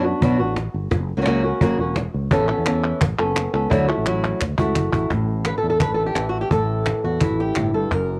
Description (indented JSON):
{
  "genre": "flamenco",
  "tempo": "171 BPM",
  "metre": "4/4",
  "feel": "straight",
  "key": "unclear",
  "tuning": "A4 = 437 Hz",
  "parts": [
    { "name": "flamenco guitar", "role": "melody", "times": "0.0-8.2 s", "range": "F#2 to B4", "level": "-23 LUFS", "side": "equal", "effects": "cassette tape" },
    { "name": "fretless electric bass", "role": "bass", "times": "0.0-8.2 s", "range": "E1 to F#2", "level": "-27 LUFS", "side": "equal", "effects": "none" },
    { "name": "cajon", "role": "percussion", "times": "0.2-8.2 s", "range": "none", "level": "-26 LUFS", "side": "equal", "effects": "none" },
    { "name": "palmas hand claps", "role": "percussion", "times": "2.3-8.1 s", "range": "none", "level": "-30 LUFS", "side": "equal", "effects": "none" }
  ],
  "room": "moderate small room reverb, RT60 0.5 s",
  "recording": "home recording on cassette",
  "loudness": "-21 LUFS",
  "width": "mono",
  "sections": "0.0-5.1 A section; 5.1-8.2 B section",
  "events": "drum fill 4.1-5.1",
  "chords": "0.0 Bm; 0.9 F#; 2.3 Aadd9; 3.7 Dadd9; 5.1 Asus4"
}